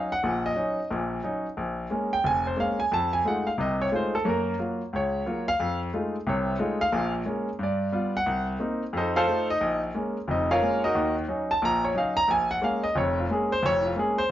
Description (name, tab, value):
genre	jazz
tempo	179 BPM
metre	4/4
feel	swing 63% on 8ths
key	Bb minor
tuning	A4 = 440 Hz
part	clear grand piano	solo	0.0-14.3 s	F1 to Bb5	-24 LUFS	equal	none
room	moderate studio reverb, RT60 0.7 s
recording	nothing above 7.5 kHz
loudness	-24 LUFS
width	side -12 dB against mid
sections	0.0-9.6 A section; 9.6-14.3 A section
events	grand piano solo 0.0-14.3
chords	0.0 Ebm7; 1.6 Bbm7; 2.9 F7#9; 4.2 Gbmaj7; 5.6 F7#9; 6.9 Bbm7; 7.6 G7; 8.3 Cm7b5; 8.9 F7; 9.6 Bbm7; 10.9 Ebm7; 12.3 Bbm7